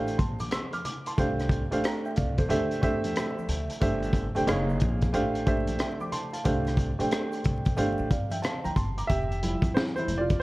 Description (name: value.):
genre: hip hop, jazz-hop.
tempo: 91 BPM.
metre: 4/4.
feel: swing 64% on 16ths.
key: unclear.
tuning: A4 = 439 Hz.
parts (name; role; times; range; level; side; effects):
dark grand piano; accompaniment; 0.0-10.4 s; F3 to F6; -28 LUFS; right 1 dB; none.
upright bass; bass; 0.0-10.4 s; E1 to G2; -32 LUFS; equal; none.
crunchy breakbeat drum kit; drums; 0.1-10.4 s; hi-hat, kick drum, rim click, snare drum; -29 LUFS; equal; vintage 12-bit sampler grit.
tube shaker and congas; percussion; 0.1-10.4 s; none; -42 LUFS; left 2 dB; none.
room: studio ambience.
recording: dark, warm production, vinyl crackle.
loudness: -25 LUFS.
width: side -19 dB against mid.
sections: 0.0-9.1 A section; 9.1-10.4 B section.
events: grand piano solo 9.1-10.4.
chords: 0.0 Fadd9/A; 1.2 C9sus4; 2.5 D9sus4; 3.8 Gsus2; 4.5 F#maj9; 5.1 Fmaj9/A; 6.5 Csus4; 7.8 Gsus2; 9.1 Fmaj7sus2.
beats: 0.52 | 1.18 1.84 2.50 3.16 | 3.82 4.48 5.14 5.80 | 6.46 7.12 7.78 8.44 | 9.09 9.75 10.41.